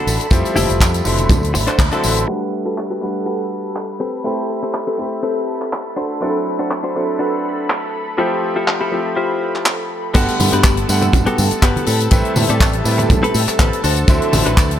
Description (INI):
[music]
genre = nu-disco, nu disco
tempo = 122 BPM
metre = 4/4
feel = swing 53% on 16ths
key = G major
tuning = A4 = 440 Hz
[part]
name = bright grand piano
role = accompaniment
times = 0.0-14.8 s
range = C3 to B5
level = -21 LUFS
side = equal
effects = sidechain pumping, dub echo
[part]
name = lush unison pad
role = sustained chords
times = 0.0-14.8 s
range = A4 to B5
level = -25 LUFS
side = right 1 dB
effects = chorus, phaser, sidechain pumping
[part]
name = direct-recorded clean electric guitar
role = riff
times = 0.0-14.7 s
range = B3 to D5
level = -22 LUFS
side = left 2 dB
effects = lush chorus, low-pass filter, dub echo
[part]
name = fingered electric bass with an envelope filter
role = bass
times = 0.1-2.2, 10.2-14.8 s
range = F1 to A2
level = -19 LUFS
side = equal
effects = none
[part]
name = tight funk drum kit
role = drums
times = 0.1-14.8 s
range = crash cymbal, handclaps, hi-hat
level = -22 LUFS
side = left 1 dB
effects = low-pass filter on hats, low-pass filter on cymbals, low-pass filter on snare, low-pass filter on room
[part]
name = tambourine and congas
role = percussion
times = 0.1-2.3, 10.2-14.7 s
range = none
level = -23 LUFS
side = right 2 dB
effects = none
[part]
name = kick drum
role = drums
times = 0.3-1.9, 10.2-14.7 s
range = none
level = -14 LUFS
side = equal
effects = none
[sound]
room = light reverb, small room ambience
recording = low-pass filter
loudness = -15 LUFS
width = side -10 dB against mid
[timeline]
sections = 0.0-2.3 A section; 2.3-10.2 B section; 10.2-14.8 C section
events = band accent 1.8; filter sweep on drum 2.3-10.2; filter sweep 2.3-10.2; drop 10.2-14.8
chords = 0.3 Fmaj9; 1.3 D7; 2.3 Gmaj9; 4.0 Am9; 6.0 D7; 8.2 Fmaj9; 10.2 Gmaj9; 11.9 Am9; 13.8 D7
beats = | 0.32 0.81 1.30 1.79 | 2.28 2.77 3.27 3.76 | 4.25 4.74 5.23 5.73 | 6.22 6.71 7.20 7.69 | 8.19 8.68 9.17 9.66 | 10.15 10.64 11.14 11.63 | 12.12 12.61 13.10 13.60 | 14.09 14.58